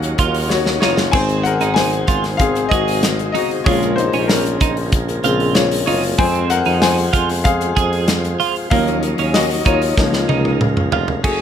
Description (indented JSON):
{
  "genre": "piano-driven pop",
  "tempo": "95 BPM",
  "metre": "4/4",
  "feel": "straight",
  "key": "Db major",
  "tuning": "A4 = 441 Hz",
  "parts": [
    { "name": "warm concert grand piano", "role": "accompaniment", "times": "0.0-11.4 s", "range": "Db3 to Ab5", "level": "-19 LUFS", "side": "left 5 dB", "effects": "none" },
    { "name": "tonewheel organ", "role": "sustained chords", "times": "0.0-11.2 s", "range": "Db3 to F4", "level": "-26 LUFS", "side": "right 2 dB", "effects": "fast rotary speaker" },
    { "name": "warm tuba", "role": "bass", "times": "0.0-11.4 s", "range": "F1 to F2", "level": "-22 LUFS", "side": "right 1 dB", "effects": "none" },
    { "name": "modern studio drum kit", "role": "drums", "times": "0.0-11.4 s", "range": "crash cymbal, hi-hat, kick drum, snare drum, splash cymbal, toms", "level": "-19 LUFS", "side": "equal", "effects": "none" },
    { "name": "twelve-string electric guitar", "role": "riff", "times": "0.2-11.4 s", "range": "Ab3 to Ab4", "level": "-22 LUFS", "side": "right 10 dB", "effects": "wide subtle chorus" }
  ],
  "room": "light reverb, small room ambience",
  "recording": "none",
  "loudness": "-14 LUFS",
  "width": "side -9 dB against mid",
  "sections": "0.0-11.2 A section",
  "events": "grand piano solo 0.0-11.2; drum fill 0.5-1.1, 10.0-11.2",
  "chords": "0.0 Ebm7; 1.1 Ab; 3.7 Bbm7; 6.2 Fm; 8.7 Ebm7; 10.0 Db6"
}